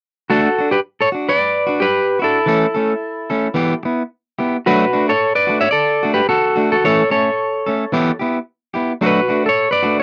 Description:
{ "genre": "highlife", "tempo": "110 BPM", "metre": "4/4", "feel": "straight", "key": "D major", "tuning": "A4 = 440 Hz", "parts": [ { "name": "clean electric guitar", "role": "melody", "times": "0.3-10.0 s", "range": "E4 to E5", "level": "-18 LUFS", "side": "equal", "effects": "none" }, { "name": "electric guitar at the edge of break-up", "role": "accompaniment", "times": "0.3-10.0 s", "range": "E3 to A4", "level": "-20 LUFS", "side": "equal", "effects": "none" } ], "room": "light reverb", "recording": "dry, close 1970s-style studio recording", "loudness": "-17 LUFS", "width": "mono", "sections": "0.3-10.0 A section", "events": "none", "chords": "0.3 D; 2.5 A; 3.6 Em; 4.7 D; 6.8 A; 7.9 Em; 9.0 D" }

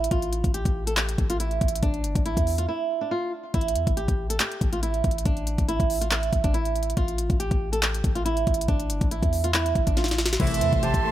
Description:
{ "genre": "hip hop, trap", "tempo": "140 BPM", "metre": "4/4", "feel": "half-time", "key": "unclear", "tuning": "A4 = 441 Hz", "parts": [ { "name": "flamenco guitar", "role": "melody", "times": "0.0-11.1 s", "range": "D4 to A4", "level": "-27 LUFS", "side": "right 4 dB", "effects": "low-pass filter, digital delay" }, { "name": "warm 808-style bass", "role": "bass", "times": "0.0-11.1 s", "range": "G1 to E2", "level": "-27 LUFS", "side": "left 1 dB", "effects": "none" }, { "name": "trap drum kit", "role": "drums", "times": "0.0-11.0 s", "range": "crash cymbal, handclaps, hi-hat, kick drum, snare drum", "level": "-25 LUFS", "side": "left 1 dB", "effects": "overdrive" }, { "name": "reedy concert flute", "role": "second line", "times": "10.4-11.1 s", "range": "E5 to A5", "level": "-28 LUFS", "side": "right 7 dB", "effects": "none" }, { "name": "concert harp", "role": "accompaniment", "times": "10.4-11.1 s", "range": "C3 to A3", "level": "-28 LUFS", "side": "left 6 dB", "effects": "low-pass filter" }, { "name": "dark studio string section", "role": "sustained chords", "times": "10.4-11.1 s", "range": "A4 to C6", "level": "-33 LUFS", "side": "left 3 dB", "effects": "none" }, { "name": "resonant sweep polysynth", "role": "stabs", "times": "10.4-10.8 s", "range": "C2 to E3", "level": "-31 LUFS", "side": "left 1 dB", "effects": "chorus, digital delay" } ], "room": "little or no reverb", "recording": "none", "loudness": "-22 LUFS", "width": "side -13 dB against mid", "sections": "0.0-10.4 A section", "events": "break 2.7-3.5; drum fill 10.0-10.4", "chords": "0.1 Fmaj7; 3.5 A5; 7.0 Fmaj7; 10.4 Am" }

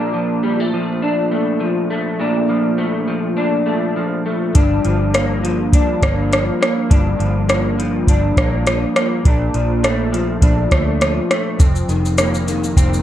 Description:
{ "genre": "indie pop, bedroom pop", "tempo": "102 BPM", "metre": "4/4", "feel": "swing 55% on 16ths", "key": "Bb major", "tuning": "A4 = 440 Hz", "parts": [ { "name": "electric guitar through a small old amp", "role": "accompaniment", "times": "0.0-13.0 s", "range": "F2 to D4", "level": "-18 LUFS", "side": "left 1 dB", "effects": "analog chorus, vibrato effect" }, { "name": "soft vintage rhythm box", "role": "drums", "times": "4.5-13.0 s", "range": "hi-hat, kick drum, rim click, shaker", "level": "-16 LUFS", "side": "equal", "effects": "overdrive" }, { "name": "vintage muted fingered electric bass", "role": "bass", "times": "4.6-13.0 s", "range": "F1 to D2", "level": "-20 LUFS", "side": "equal", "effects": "none" } ], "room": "light reverb", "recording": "none", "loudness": "-14 LUFS", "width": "side -12 dB against mid", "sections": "0.0-13.0 A section", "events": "none", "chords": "0.0 Bbmaj7; 4.5 Gm7; 9.2 Bbmaj7; 11.6 F7sus4" }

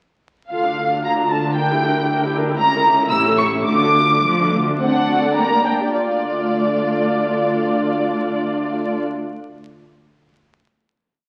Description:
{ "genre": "quick classical-period movement for string orchestra", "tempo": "102-117 BPM", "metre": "2/4", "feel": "rubato", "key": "D minor", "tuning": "A4 = 442 Hz", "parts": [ { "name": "dark studio violin section", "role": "melody", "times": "0.5-9.0 s", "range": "D5 to E6", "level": "-23 LUFS", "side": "equal", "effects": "none" }, { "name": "warm studio violin section", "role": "second line", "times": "0.5-9.0 s", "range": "G3 to E6", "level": "-24 LUFS", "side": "equal", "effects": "none" }, { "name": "dark studio viola section", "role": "accompaniment", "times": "0.5-9.0 s", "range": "A3 to Bb4", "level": "-25 LUFS", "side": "equal", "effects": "none" }, { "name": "warm studio cello section", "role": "bass", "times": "0.5-9.0 s", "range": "D2 to F3", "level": "-28 LUFS", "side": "equal", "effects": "none" }, { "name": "warm studio double bass section", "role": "bass", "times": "0.5-9.0 s", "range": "A1 to D2", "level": "-30 LUFS", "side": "equal", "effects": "none" } ], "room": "wet scoring stage reverb, RT60 1.6 s", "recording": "very old 78 rpm record, vinyl crackle", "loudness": "-18 LUFS", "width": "mono", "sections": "0.5-4.8 A section; 4.8-5.9 coda; 5.9-8.2 final chord", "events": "slowing down 3.1-5.9", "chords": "0.5 Dm; 1.6 Em7b5/D; 2.6 C#dim7; 3.1 A7; 3.7 Dm; 4.8 D7; 5.4 Gm/D; 5.9 Dm" }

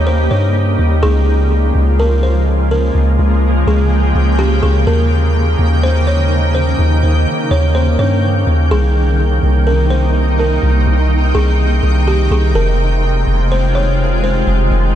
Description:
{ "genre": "hip hop, atmospheric cloud-rap", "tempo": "125 BPM", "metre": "4/4", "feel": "half-time", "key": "unclear", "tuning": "A4 = 439 Hz", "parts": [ { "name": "buzzing kalimba", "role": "melody", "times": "0.0-14.5 s", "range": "G4 to Db5", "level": "-21 LUFS", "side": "equal", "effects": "digital delay" }, { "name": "shimmering ambient pad", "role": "sustained chords", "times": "0.0-15.0 s", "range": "C3 to G5", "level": "-17 LUFS", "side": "equal", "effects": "chorus, built-in reverb" }, { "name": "long sustained 808-style bass", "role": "bass", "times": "0.0-14.9 s", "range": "F1 to G2", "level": "-13 LUFS", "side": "equal", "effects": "none" } ], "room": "little or no reverb", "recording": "dark, warm production", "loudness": "-11 LUFS", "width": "side -10 dB against mid", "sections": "0.0-1.0 A section; 1.0-15.0 B section", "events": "none", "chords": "0.0 Eb7; 1.0 Db6; 4.9 Eb7; 8.7 Cm7; 12.6 Fmadd9" }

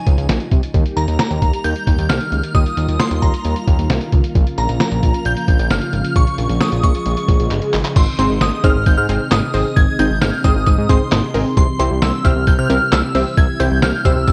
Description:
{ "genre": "synth-pop", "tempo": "133 BPM", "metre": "4/4", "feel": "straight", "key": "Ab major", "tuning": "A4 = 441 Hz", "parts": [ { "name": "shimmering bell with halo", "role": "melody", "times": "0.0-14.3 s", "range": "Bb5 to Ab6", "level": "-24 LUFS", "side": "equal", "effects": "ensemble chorus" }, { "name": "ensemble organ-string", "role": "sustained chords", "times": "0.0-14.3 s", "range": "C3 to G4", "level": "-27 LUFS", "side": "equal", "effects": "ensemble chorus" }, { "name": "fat analog bass", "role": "bass", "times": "0.1-14.3 s", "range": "G1 to C3", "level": "-22 LUFS", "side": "equal", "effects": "none" }, { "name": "lo-fi sampler-style drum kit", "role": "drums", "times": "0.1-14.3 s", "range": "crash cymbal, handclaps, hi-hat, kick drum, snare drum", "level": "-18 LUFS", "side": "equal", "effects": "none" }, { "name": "swell", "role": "sound effects", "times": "6.9-8.0 s", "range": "none", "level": "-29 LUFS", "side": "equal", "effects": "none" }, { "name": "unison pluck", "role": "accompaniment", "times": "8.2-14.2 s", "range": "C4 to Eb5", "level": "-23 LUFS", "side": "equal", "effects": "none" } ], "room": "moderate small room reverb, RT60 0.5 s", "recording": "dark, warm production", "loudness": "-16 LUFS", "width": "mono", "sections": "0.0-8.0 A section; 8.0-14.3 B section", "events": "swell 6.9-8.0; drum fill 7.5-8.0", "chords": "0.0 Db; 0.7 Eb; 4.4 Bbm; 8.0 Ab; 11.6 C" }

